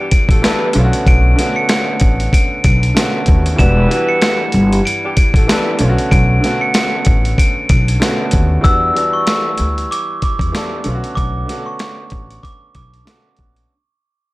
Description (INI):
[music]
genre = hip hop, boom-bap hip-hop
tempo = 95 BPM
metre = 4/4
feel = swing 56% on 16ths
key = E dorian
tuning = A4 = 438 Hz
[part]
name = glockenspiel with brass mallets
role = melody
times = 0.0-13.7 s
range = C#6 to E7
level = -20 LUFS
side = equal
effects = high-pass filter, low-pass filter, analog delay
[part]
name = bright grand piano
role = accompaniment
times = 0.0-13.7 s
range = D3 to A4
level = -20 LUFS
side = right 1 dB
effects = cassette tape, high-pass filter, low-pass filter
[part]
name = dark saxophone section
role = stabs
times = 0.0-5.7 s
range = E3 to B4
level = -21 LUFS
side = equal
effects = high-pass filter, low-pass filter, analog delay
[part]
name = boom bap sampler-style drum kit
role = drums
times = 0.1-13.7 s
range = hi-hat, kick drum, snare drum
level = -15 LUFS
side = equal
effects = none
[part]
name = upright bass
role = bass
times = 0.3-13.6 s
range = E1 to E2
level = -15 LUFS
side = equal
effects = none
[sound]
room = little or no reverb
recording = dry, gritty hardware recording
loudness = -12 LUFS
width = side -20 dB against mid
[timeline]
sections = 0.0-8.6 A section; 8.6-13.7 B section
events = fade-out 8.6-13.7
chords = 0.0 Em7; 0.8 Bm7; 3.6 Em7; 5.8 Bm7; 8.6 Em7; 10.9 Bm7